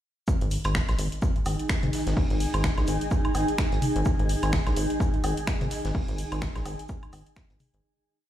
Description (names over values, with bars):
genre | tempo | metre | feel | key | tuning
minimal techno | 127 BPM | 4/4 | swing 58% on 16ths | unclear | A4 = 435 Hz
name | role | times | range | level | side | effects
crunchy breakbeat drum kit | drums | 0.3-7.7 s | hi-hat, shaker, snare drum | -42 LUFS | equal | high-pass filter on hats, high-pass filter on snare, high-pass filter on perc, high-pass filter on room
electronic kick drum | drums | 0.3-7.5 s | none | -27 LUFS | equal | none
granular cloud pad | texture | 1.5-7.8 s | D#4 to G#5 | -30 LUFS | equal | built-in reverb, sidechain pumping
rubbery square bass | bass | 0.4-7.8 s | G#1 to A#1 | -28 LUFS | equal | tube saturation, sidechain pumping
house drum kit | drums | 0.4-7.8 s | finger snaps, hi-hat | -35 LUFS | equal | none
electronic woodblock and toms | percussion | 0.7-7.7 s | none | -34 LUFS | left 1 dB | ping-pong delay
room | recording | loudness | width
light reverb | played on a big sound system in a bare room, stone room reverb | -24 LUFS | side -12 dB against mid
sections
0.3-7.8 drop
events
drop 0.3-7.8; fade-out 5.3-7.8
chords
0.3 G#5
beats
| 0.28 0.75 1.22 1.70 | 2.17 2.64 3.11 3.58 | 4.06 4.53 5.00 5.47 | 5.95 6.42 6.89 7.36